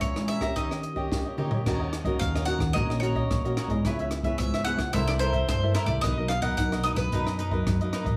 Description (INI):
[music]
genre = samba and choro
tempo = 110 BPM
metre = 4/4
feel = straight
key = Eb minor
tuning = A4 = 442 Hz
[part]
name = bowl-back mandolin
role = melody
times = 0.0-7.9 s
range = Bb4 to Gb5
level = -33 LUFS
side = equal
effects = plate reverb
[part]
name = cavaquinho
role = accompaniment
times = 0.0-8.2 s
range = Eb4 to Bb5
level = -36 LUFS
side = equal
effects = none
[part]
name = nylon-string guitar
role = accompaniment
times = 0.0-8.2 s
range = F#2 to A4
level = -34 LUFS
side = equal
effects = none
[part]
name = compact cocktail drum kit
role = drums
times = 0.0-8.2 s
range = crash cymbal, hi-hat, kick drum, rim click, snare drum, toms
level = -33 LUFS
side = equal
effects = none
[part]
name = upright bass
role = bass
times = 1.7-8.2 s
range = A1 to Eb3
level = -31 LUFS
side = equal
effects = none
[sound]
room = moderate studio ambience, RT60 0.5 s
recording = small room reverb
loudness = -27 LUFS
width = mono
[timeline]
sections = 0.0-1.7 A section; 1.7-8.2 B section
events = drum fill 1.1-1.7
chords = 0.0 Bbm7b5; 0.6 Eb7; 1.7 Ebm7; 3.8 Dbm7; 4.9 C6; 6.0 Bmaj7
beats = 0.02 0.56 1.11 | 1.66 2.21 2.75 3.30 | 3.84 4.39 4.93 5.48 | 6.03 6.57 7.12 7.66